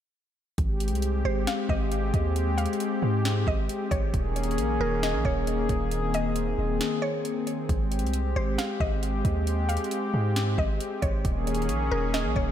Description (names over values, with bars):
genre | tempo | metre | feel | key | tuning
hip hop, atmospheric cloud-rap | 135 BPM | 4/4 | half-time | Ab major | A4 = 441 Hz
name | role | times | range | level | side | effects
warm analog pad | sustained chords | 0.6-12.5 s | Eb3 to Ab4 | -28 LUFS | left 2 dB | chorus, sidechain pumping
long sustained 808-style bass | bass | 0.6-12.5 s | Eb1 to Ab2 | -28 LUFS | equal | none
smooth R&B drum kit | drums | 0.6-12.5 s | hi-hat, kick drum, snare drum | -31 LUFS | equal | overdrive
mallet-like synth pluck | melody | 1.3-12.5 s | Bb4 to F5 | -34 LUFS | equal | chorus, analog delay
room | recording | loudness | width
moderate church reverb, RT60 2.9 s | dreamy mix soaked in reverb | -24 LUFS | side -10 dB against mid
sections
0.6-12.5 A section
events
kick muted 6.8-7.7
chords
0.6 Abmaj7; 4.1 Eb7sus4; 7.7 Abmaj7; 11.2 Eb7sus4